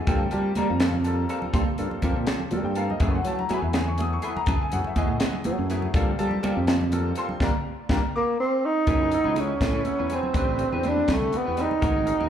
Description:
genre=electric jazz fusion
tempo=82 BPM (dotted quarters)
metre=6/8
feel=straight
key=unclear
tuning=A4 = 442 Hz
part: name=bright concert grand piano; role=accompaniment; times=0.0-12.3 s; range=F#3 to D#6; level=-31 LUFS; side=left 2 dB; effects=slapback echo
part: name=clean electric guitar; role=stabs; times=0.1-12.3 s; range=A3 to B4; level=-34 LUFS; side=right 2 dB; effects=ensemble chorus, slapback echo
part: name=sustaining fretless electric bass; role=bass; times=0.1-12.3 s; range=G1 to G3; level=-27 LUFS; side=equal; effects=analog chorus
part: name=crisp fusion drum kit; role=drums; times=0.1-12.2 s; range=hi-hat, kick drum, snare drum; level=-26 LUFS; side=left 1 dB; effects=none
part: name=congas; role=percussion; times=0.1-12.3 s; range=none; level=-34 LUFS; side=right 4 dB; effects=slapback echo
part: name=breathy tenor saxophone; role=melody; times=8.2-12.3 s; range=A3 to D#4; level=-23 LUFS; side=right 2 dB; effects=slapback echo, tape echo
room=light reverb, small room ambience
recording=live gig heard through the venue's PA, club reverb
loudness=-22 LUFS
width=side -9 dB against mid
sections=0.0-8.9 A section; 8.9-12.3 B section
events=band accent 7.4-8.9; drum fill 8.1-8.9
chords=0.1 Gm11; 3.0 F#m11; 5.9 Gm11; 8.9 F#m11; 10.4 Am11

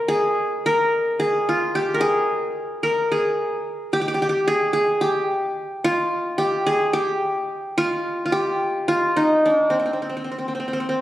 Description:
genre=turkish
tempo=219 BPM (eighths)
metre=7/8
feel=straight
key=C makam ussak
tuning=A4 = 439 Hz
part: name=qanun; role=solo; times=0.0-11.0 s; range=C4 to Bb4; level=-19 LUFS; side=equal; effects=none
room=wet scoring stage reverb, RT60 1.6 s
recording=recorded on a phone in the room, studio reverb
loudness=-19 LUFS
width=side -14 dB against mid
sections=0.0-11.0 A section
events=none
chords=none

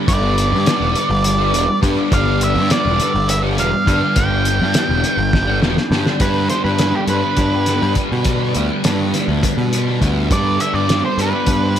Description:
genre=psychedelic rock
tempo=205 BPM (eighths)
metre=7/8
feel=straight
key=G major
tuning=A4 = 438 Hz
part: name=string machine, violins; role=sustained chords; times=0.0-11.8 s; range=G3 to D5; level=-28 LUFS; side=right 2 dB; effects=ensemble chorus
part: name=overdriven semi-hollow guitar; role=riff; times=0.0-11.8 s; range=G2 to D4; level=-20 LUFS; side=left 1 dB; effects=flanger
part: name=octave-fuzz lead guitar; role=melody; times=0.1-11.8 s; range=G4 to G5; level=-20 LUFS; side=right 2 dB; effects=distortion, analog delay
part: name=fuzz picked electric bass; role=bass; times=0.1-11.8 s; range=E1 to B2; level=-19 LUFS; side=equal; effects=overdrive
part: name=cloth-damped thuddy drum kit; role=drums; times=0.1-11.8 s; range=hi-hat, kick drum, snare drum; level=-20 LUFS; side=equal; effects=analog delay
room=small room reverb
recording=echo-heavy mix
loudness=-14 LUFS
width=side -10 dB against mid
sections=0.0-6.2 A section; 6.2-11.8 B section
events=drum fill 5.3-6.2; lead electric guitar solo 6.2-11.8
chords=0.0 G

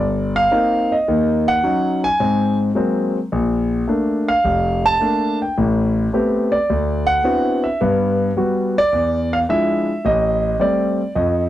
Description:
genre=solo jazz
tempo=107 BPM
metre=4/4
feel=swing 69% on 8ths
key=unclear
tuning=A4 = 440 Hz
part: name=warm concert grand piano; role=solo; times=0.0-11.5 s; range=F1 to A5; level=-16 LUFS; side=equal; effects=none
room=light reverb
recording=dry, gritty hardware recording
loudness=-16 LUFS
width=side -13 dB against mid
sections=0.0-11.5 A section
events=none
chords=0.0 Cm7; 1.1 Ebm7; 2.2 Ab9; 3.3 Bbmaj7; 5.6 Am9; 6.7 D13; 7.8 Gmaj7; 8.9 E7b9; 10.0 Am7b5

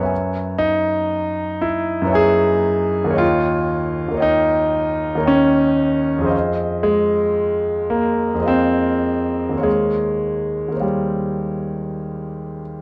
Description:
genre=classical, impressionist solo piano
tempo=50-59 BPM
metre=3/4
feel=rubato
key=unclear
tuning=A4 = 440 Hz
part: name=warm concert grand piano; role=solo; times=0.0-12.8 s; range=C#2 to G#5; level=-19 LUFS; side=equal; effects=none
room=moderate studio reverb, RT60 0.5 s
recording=worn, warbling old tape, cassette tape, warbly pitch drift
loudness=-19 LUFS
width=mono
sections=0.0-12.8 A section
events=none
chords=0.1 F#11; 3.2 D#9; 6.3 Fm7; 9.7 Eb13

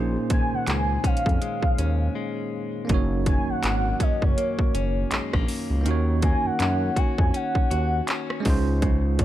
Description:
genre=contemporary R&B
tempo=81 BPM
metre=4/4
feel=swing 58% on 16ths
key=Eb dorian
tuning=A4 = 440 Hz
part: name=bell-like tine electric piano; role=accompaniment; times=0.0-9.2 s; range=Ab3 to Db5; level=-29 LUFS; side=right 6 dB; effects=medium stereo tremolo
part: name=direct-recorded clean electric guitar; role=arpeggios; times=0.0-9.2 s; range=Gb2 to Gb4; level=-31 LUFS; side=left 7 dB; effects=ping-pong delay
part: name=smooth synth bass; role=bass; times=0.0-9.2 s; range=Gb1 to Gb2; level=-25 LUFS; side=equal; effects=none
part: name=warm velvety synth lead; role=melody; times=0.3-9.2 s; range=Db5 to Ab5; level=-29 LUFS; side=equal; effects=chorus
part: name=trap drum kit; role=drums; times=0.3-9.2 s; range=handclaps, hi-hat, kick drum, rim click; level=-24 LUFS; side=equal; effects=none
room=little or no reverb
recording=dark, warm production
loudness=-21 LUFS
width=side -13 dB against mid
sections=0.0-9.2 A section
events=break 2.2-2.9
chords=0.0 Bbm11; 2.9 Gb6; 5.9 Ebm7; 8.5 Dbmaj9

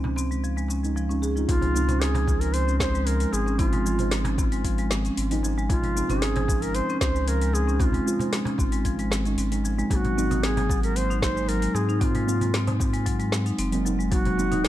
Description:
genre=organic downtempo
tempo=114 BPM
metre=4/4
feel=straight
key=unclear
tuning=A4 = 438 Hz
part: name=muted felt-like synth keys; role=accompaniment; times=0.0-14.7 s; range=F3 to C5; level=-31 LUFS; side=right 2 dB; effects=chorus, sidechain pumping, tape echo
part: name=marimba with medium mallets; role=arpeggios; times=0.0-14.7 s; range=F3 to Ab4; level=-28 LUFS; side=equal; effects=tape echo
part: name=warm sub bass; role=bass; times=0.0-14.7 s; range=Eb1 to Ab2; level=-27 LUFS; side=equal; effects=sidechain pumping
part: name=darbuka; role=percussion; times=0.0-14.6 s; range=none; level=-36 LUFS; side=right 2 dB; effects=none
part: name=afro-pop drum kit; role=drums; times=0.2-14.7 s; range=hi-hat, shaker, snare drum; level=-32 LUFS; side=left 1 dB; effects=small room ambience
part: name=bright reedy bansuri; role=melody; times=1.5-14.7 s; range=F4 to Db5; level=-30 LUFS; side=equal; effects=ping-pong delay
part: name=electronic kick drum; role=drums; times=1.5-14.2 s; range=none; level=-26 LUFS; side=equal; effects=small room ambience
room=light reverb, small room ambience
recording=dark, warm production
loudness=-22 LUFS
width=side -13 dB against mid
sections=0.0-1.5 A section; 1.5-14.7 B section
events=none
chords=0.0 Dbmaj7; 9.9 Ab7

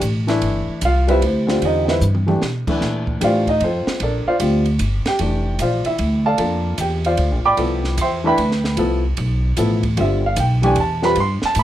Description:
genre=modal jazz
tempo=151 BPM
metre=3/4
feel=swing 66% on 8ths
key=C major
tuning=A4 = 439 Hz
part: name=upright bass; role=bass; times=0.0-11.6 s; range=F1 to B2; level=-20 LUFS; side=equal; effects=none
part: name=compact cocktail drum kit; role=drums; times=0.0-11.6 s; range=crash cymbal, hi-hat, kick drum, ride cymbal, snare drum, toms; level=-27 LUFS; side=right 2 dB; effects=none
part: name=warm upright piano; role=accompaniment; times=0.3-11.6 s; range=D3 to D6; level=-19 LUFS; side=equal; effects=none
room=light reverb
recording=none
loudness=-16 LUFS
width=side -12 dB against mid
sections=0.0-11.6 A section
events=drum fill 2.0-2.4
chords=0.0 Cmaj9; 2.8 Bbmaj9; 7.6 Cmaj9

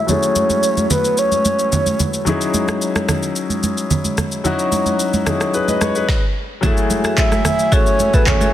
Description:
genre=amapiano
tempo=110 BPM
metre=4/4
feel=straight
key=F# dorian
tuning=A4 = 440 Hz
part: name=breathy flute-like synth lead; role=melody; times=0.0-2.0, 7.2-8.5 s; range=B4 to E5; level=-18 LUFS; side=right 1 dB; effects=chorus, low-pass filter, tape echo
part: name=clear concert grand piano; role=accompaniment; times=0.0-8.5 s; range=F#3 to D#5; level=-20 LUFS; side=left 4 dB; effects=low-pass filter
part: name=afro-pop drum kit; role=drums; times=0.1-8.5 s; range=handclaps, kick drum, rim click, shaker, snare drum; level=-20 LUFS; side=equal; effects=none
part: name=congas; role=percussion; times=0.1-8.5 s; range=none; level=-22 LUFS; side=right 3 dB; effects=none
part: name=warm brass ensemble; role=sustained chords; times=6.6-8.5 s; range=E3 to G#5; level=-27 LUFS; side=right 1 dB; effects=sidechain pumping
part: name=marimba with hard mallets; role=stabs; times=6.6-8.5 s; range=F#4 to E5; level=-23 LUFS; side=equal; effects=tape echo
room=light reverb, studio reverb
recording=dense, heavily limited modern master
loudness=-15 LUFS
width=side -12 dB against mid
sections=0.0-6.6 A section; 6.6-8.5 B section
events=filter sweep 0.0-6.6; stop 6.1-6.6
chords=0.0 F#m9; 2.3 Emaj13; 6.4 N.C.; 6.6 F#m9

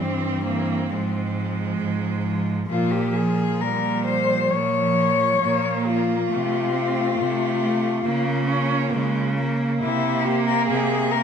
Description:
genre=classical, lyrical piece for cello ensemble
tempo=67 BPM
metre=4/4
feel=rubato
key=F minor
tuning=A4 = 440 Hz
part: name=rich cello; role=melody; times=0.0-11.2 s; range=C4 to Db5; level=-24 LUFS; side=left 6 dB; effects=none
part: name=rich cello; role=second line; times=0.0-11.2 s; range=F3 to Db4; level=-26 LUFS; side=right 8 dB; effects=none
part: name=rich cello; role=accompaniment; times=0.0-11.2 s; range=E3 to Bb3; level=-29 LUFS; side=left 2 dB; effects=none
part: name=clear cello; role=bass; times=0.0-11.2 s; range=G2 to Db3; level=-26 LUFS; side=right 2 dB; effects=none
room=moderate recital hall reverb, RT60 1.4 s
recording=minimal, uncompressed stereo recording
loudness=-20 LUFS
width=side -7 dB against mid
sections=0.0-11.2 A section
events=none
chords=0.0 C/G; 0.9 Fm/Ab; 2.7 Bbm; 6.3 F/C; 8.0 Bbm/Db; 9.8 C5

